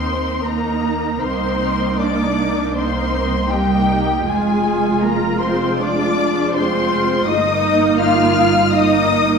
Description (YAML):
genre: classical, slow romantic movement for string orchestra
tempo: 79 BPM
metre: 4/4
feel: rubato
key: Eb major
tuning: A4 = 440 Hz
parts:
  - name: muted symphonic violin section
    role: melody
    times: 0.0-9.4 s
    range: G5 to F6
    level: -23 LUFS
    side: left 4 dB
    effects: none
  - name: muted symphonic violin section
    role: second line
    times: 0.0-9.4 s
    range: G4 to F5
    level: -21 LUFS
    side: left 4 dB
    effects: none
  - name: muted symphonic viola section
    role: accompaniment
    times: 0.0-9.4 s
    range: Ab3 to F4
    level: -20 LUFS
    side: right 2 dB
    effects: none
  - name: muted symphonic cello section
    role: bass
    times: 0.0-9.4 s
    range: G3 to F4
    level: -22 LUFS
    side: right 3 dB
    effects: none
  - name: muted symphonic double bass section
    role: bass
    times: 0.0-9.4 s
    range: F1 to Eb2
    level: -23 LUFS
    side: right 2 dB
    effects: none
room: wet recital hall reverb, RT60 1.4 s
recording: heard from further back in the room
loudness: -15 LUFS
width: side -6 dB against mid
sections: 0.0-9.4 A section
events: none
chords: 0.0 Eb5; 1.2 Cm7; 4.3 Fm; 7.3 Eb/G